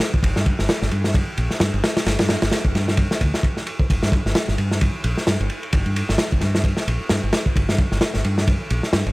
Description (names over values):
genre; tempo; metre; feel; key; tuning
breakbeat, breaks; 131 BPM; 4/4; swing 57% on 16ths; G minor; A4 = 440 Hz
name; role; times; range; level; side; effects
crunchy breakbeat drum kit; drums; 0.0-9.1 s; kick drum, ride cymbal, snare drum; -20 LUFS; equal; none
fingered electric bass; bass; 0.2-9.1 s; G1 to G2; -22 LUFS; equal; none
room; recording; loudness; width
little or no reverb; none; -18 LUFS; side -22 dB against mid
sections
0.0-9.1 A section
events
none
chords
none